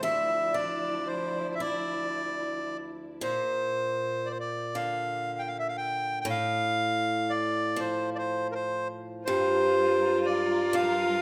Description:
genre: celtic folk, Celtic slow air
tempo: 37-41 BPM (dotted quarters)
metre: 6/8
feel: rubato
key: unclear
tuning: A4 = 440 Hz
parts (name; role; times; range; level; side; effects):
- accordion; melody; 0.0-11.2 s; Bb4 to G5; -31 LUFS; equal; none
- picked swing-style acoustic guitar; accompaniment; 0.0-11.2 s; D2 to E4; -35 LUFS; equal; none
- muted studio string section; sustained chords; 0.0-3.2, 9.2-11.2 s; F3 to D5; -41 LUFS; equal; none
- rich viola; second line; 9.3-11.2 s; F4; -31 LUFS; equal; none
room: moderate concert hall reverb, RT60 1.7 s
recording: none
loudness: -29 LUFS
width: mono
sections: 0.0-3.2 A section; 3.2-11.2 B section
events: none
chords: 0.0 Dmadd9; 3.2 Bbadd9; 6.3 F/A; 9.3 Gm7

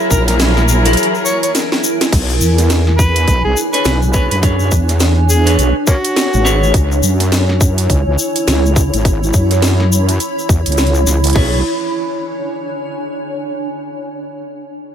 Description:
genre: glitch hop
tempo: 104 BPM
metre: 4/4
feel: swing 60% on 16ths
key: B dorian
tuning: A4 = 442 Hz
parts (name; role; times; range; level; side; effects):
- clear symphonic string section; sustained chords; 0.0-2.1 s; F#3 to A#4; -19 LUFS; equal; sidechain pumping
- clean electric guitar; stabs; 0.0-6.7, 11.3-11.6 s; D4 to C#5; -21 LUFS; equal; sidechain pumping, dub echo
- granular cloud pad; texture; 0.0-13.6 s; D4 to B5; -19 LUFS; right 1 dB; built-in reverb, sidechain pumping
- overdriven harmonica; melody; 0.1-6.7 s; A#3 to C#5; -20 LUFS; equal; vintage 12-bit sampler grit, dub echo
- wobble bass; bass; 0.1-11.6 s; G#1 to F#2; -14 LUFS; equal; chorus, overdrive
- electronic kick drum; drums; 0.1-11.5 s; none; -13 LUFS; equal; overdrive
- tube shaker; percussion; 0.1-11.3 s; none; -23 LUFS; left 5 dB; none
- drum and bass drum kit; drums; 0.3-11.5 s; crash cymbal, hi-hat, snare drum; -19 LUFS; equal; overdrive
room: light reverb, digital ambience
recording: none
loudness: -11 LUFS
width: side -9 dB against mid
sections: 0.0-2.1 A section; 2.1-11.4 B section; 11.4-13.7 C section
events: drop 0.0-2.1; break 1.0-2.1; drum fill 1.5-2.1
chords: 0.0 F#9; 2.1 Bm69; 6.7 C#m7; 11.4 Bm69

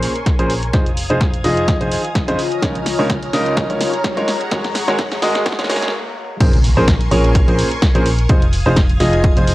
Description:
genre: piano house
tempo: 127 BPM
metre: 4/4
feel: swing 55% on 16ths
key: Bb minor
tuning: A4 = 441 Hz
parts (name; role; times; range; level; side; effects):
- string machine, violins; sustained chords; 0.0-9.5 s; Ab4 to Ab6; -28 LUFS; equal; ensemble chorus, sidechain pumping
- clear upright piano; riff; 0.0-9.5 s; Bb2 to Eb5; -19 LUFS; equal; sidechain pumping, low-pass filter, analog delay
- solid FM bass; bass; 0.0-9.5 s; F1 to F2; -19 LUFS; equal; sidechain pumping
- punchy analog drum machine; drums; 0.0-9.5 s; crash cymbal, hi-hat, snare drum; -23 LUFS; equal; none
- riser and impact; sound effects; 1.0-8.3 s; none; -27 LUFS; equal; none
- warbly tape-like pad; texture; 0.0-5.9 s; F4 to Bb5; -26 LUFS; left 3 dB; chorus, built-in reverb, sidechain pumping
- electronic kick drum; drums; 0.3-9.3 s; none; -17 LUFS; equal; none
room: little or no reverb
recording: dry, gritty hardware recording, cassette tape, high-pass filter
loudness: -14 LUFS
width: side -17 dB against mid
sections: 0.0-6.4 A section; 6.4-9.5 B section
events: build-up 0.0-6.4; drum fill 0.0-5.9; filter sweep on upright piano 0.0-6.4; filter sweep 0.0-6.4; stop 5.9-6.4; drop 6.4-9.5; impact 6.4-8.3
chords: 0.0 Bbm9; 0.7 Fm7; 2.4 Db69; 4.3 Ab9sus4; 6.4 Bbm9; 8.3 Fm7

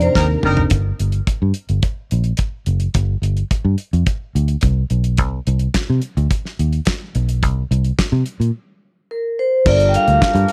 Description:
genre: disco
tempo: 107 BPM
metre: 4/4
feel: straight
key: unclear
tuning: A4 = 437 Hz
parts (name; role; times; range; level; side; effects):
- vibraphone with medium hard mallets; melody; 0.0-0.7, 9.1-10.5 s; Bb4 to G5; -19 LUFS; equal; none
- mellow tine electric piano; accompaniment; 0.0-0.7, 9.7-10.5 s; C3 to C5; -26 LUFS; equal; none
- mellow French horn section; sustained chords; 0.0-0.7, 9.7-10.5 s; Eb3 to D5; -37 LUFS; equal; none
- fingered electric bass; bass; 0.0-10.4 s; F#1 to C3; -19 LUFS; equal; none
- damped 70s drum kit; drums; 0.0-10.5 s; crash cymbal, handclaps, hi-hat, kick drum, snare drum, toms; -22 LUFS; equal; none
- clear horn section; stabs; 0.2-0.6, 9.7-10.5 s; F3 to Bb4; -26 LUFS; equal; none
room: small room ambience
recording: none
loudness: -18 LUFS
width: mono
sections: 0.7-9.7 A section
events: drum fill 0.2-0.7; break 8.5-9.7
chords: 0.0 Gmadd9; 0.7 N.C.; 9.7 Gm9

